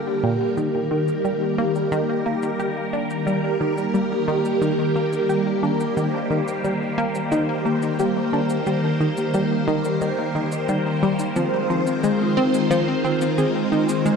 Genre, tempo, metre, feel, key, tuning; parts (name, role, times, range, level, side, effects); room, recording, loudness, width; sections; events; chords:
ambient, sequencer-driven space music; 89 BPM; 4/4; straight; A4 = 439 Hz
phased string machine; sustained chords; 0.0-14.2 s; D3 to C5; -22 LUFS; right 1 dB; ensemble chorus, phaser
soft round pluck; arpeggios; 0.0-14.0 s; Bb3 to G5; -32 LUFS; left 2 dB
analog pluck; riff; 0.0-14.2 s; Bb2 to Ab4; -24 LUFS; left 1 dB; chorus, phaser, ping-pong delay
electronic toms and shaker; percussion; 0.6-14.2 s; -35 LUFS; equal; ping-pong delay
bubbling stepped-filter texture; texture; 0.6-14.2 s; Bb3 to Bb4; -36 LUFS; equal; chorus, built-in reverb
wet scoring stage reverb, RT60 1.9 s, digital ambience; dark, warm production; -19 LUFS; side -5 dB against mid
0.6-14.2 A section
fade-in on synth texture 0.6-14.2; fade-in on drum 0.6-14.2
0.0 Gm; 0.6 Eb; 11.4 Fm7